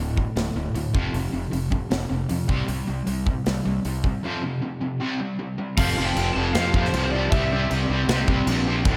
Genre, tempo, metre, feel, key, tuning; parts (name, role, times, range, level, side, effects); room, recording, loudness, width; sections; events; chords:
hard rock; 155 BPM; 4/4; straight; A4 = 439 Hz
overdriven electric guitar; riff; 0.0-9.0 s; D2 to C4; -28 LUFS; equal; harmonic tremolo, slapback echo
fuzz fingered electric bass; bass; 0.0-9.0 s; D1 to F2; -29 LUFS; equal; overdrive
big rock drum kit; drums; 0.2-8.9 s; crash cymbal, hi-hat, kick drum, snare drum; -28 LUFS; equal
lead guitar through a small cranked amp; melody; 5.8-7.7 s; C5 to A5; -30 LUFS; equal; overdrive, slapback echo
airy breathy pad; sustained chords; 5.8-9.0 s; F3 to F5; -39 LUFS; equal
light reverb, studio reverb; -24 LUFS; mono
0.0-5.8 A section; 5.8-9.0 B section
break 4.2-5.8
0.0 D5; 0.9 F5; 2.5 C5; 4.2 F5; 5.0 C5; 5.8 F5; 7.3 C